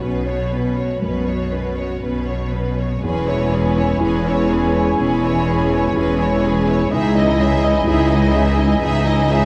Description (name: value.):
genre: cinematic, emotional film score for orchestra.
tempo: 62 BPM.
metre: 4/4.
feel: rubato.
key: unclear.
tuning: A4 = 440 Hz.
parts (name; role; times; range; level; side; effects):
warm studio violin section; melody; 0.0-9.4 s; B4 to E5; -30 LUFS; equal; none.
rich studio violin section; second line; 0.0-9.4 s; D#4 to C#5; -30 LUFS; equal; none.
felt-muted upright piano; accompaniment; 0.0-9.4 s; B1 to D#5; -26 LUFS; equal; none.
rich studio viola section; accompaniment; 0.0-9.4 s; C#4 to F#4; -31 LUFS; equal; none.
rich studio cello section; bass; 0.0-9.4 s; C#2 to B2; -24 LUFS; equal; none.
warm studio double bass section; bass; 0.0-9.4 s; E1 to C#2; -24 LUFS; equal; none.
dark clarinet; second line; 3.0-9.4 s; E4; -28 LUFS; equal; none.
mellow flute section; second line; 3.0-9.4 s; G#5; -29 LUFS; equal; none.
warm cor anglais; second line; 3.0-9.4 s; C#5 to D#5; -30 LUFS; equal; none.
mellow French horn section; sustained chords; 3.0-9.4 s; E3 to D#5; -27 LUFS; equal; none.
room: wet concert hall reverb, RT60 2.5 s.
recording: dark, warm production.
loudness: -18 LUFS.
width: mono.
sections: 0.0-3.0 A section; 3.0-9.4 B section.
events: none.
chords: 0.0 Bsus2; 3.0 E6; 6.9 C#madd9.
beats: 0.04 1.03 2.04 | 3.03 4.01 4.99 5.96 | 6.91 7.87 8.82.